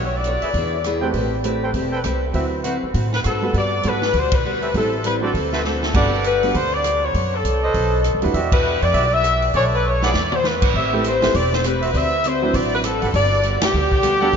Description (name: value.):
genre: jazz, big band swing.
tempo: 200 BPM.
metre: 4/4.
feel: swing 60% on 8ths.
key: G major.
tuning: A4 = 436 Hz.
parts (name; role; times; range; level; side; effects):
bright saxophone section; melody; 0.0-1.0, 3.1-14.4 s; G4 to E5; -20 LUFS; left 2 dB; none.
picked steel-string acoustic guitar; accompaniment; 0.0-5.9, 10.8-14.4 s; A2 to C#5; -28 LUFS; left 2 dB; none.
upright bass; bass; 0.0-14.4 s; E1 to A2; -23 LUFS; equal; none.
swinging big-band drum kit; drums; 0.2-14.4 s; crash cymbal, hi-hat, kick drum, ride cymbal, rim click, snare drum, toms; -25 LUFS; right 1 dB; none.
dark trumpet section; stabs; 0.4-14.3 s; F#4 to G5; -28 LUFS; right 2 dB; none.
clear upright piano; accompaniment; 1.0-8.3, 10.9-14.3 s; F#3 to B4; -27 LUFS; right 4 dB; none.
room: wet cathedral reverb, RT60 5.8 s.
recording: in a vast, echoing space, nothing above 7.5 kHz.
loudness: -17 LUFS.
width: side -6 dB against mid.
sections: 0.0-6.0 A section; 6.0-14.4 A section.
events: band accent 4.3, 8.5, 13.6; drum fill 5.7, 9.8-10.4.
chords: 0.0 Bm9; 0.5 E7; 1.1 Am9; 2.3 D13; 4.7 Am7; 5.3 D7; 6.0 Gmaj9; 7.1 F#m; 7.7 B7b9; 8.3 Em9; 9.5 Bm9; 10.1 E; 10.7 Am9; 11.9 D13; 13.1 Gmaj9.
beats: 0.24 0.54 0.84 | 1.14 1.45 1.75 2.05 | 2.35 2.65 2.95 3.25 | 3.55 3.85 4.15 4.45 | 4.75 5.05 5.35 5.65 | 5.95 6.25 6.55 6.85 | 7.15 7.45 7.75 8.05 | 8.35 8.65 8.95 9.25 | 9.55 9.85 10.14 10.44 | 10.74 11.04 11.34 11.64 | 11.94 12.24 12.54 12.84 | 13.14 13.44 13.74 14.04 | 14.34.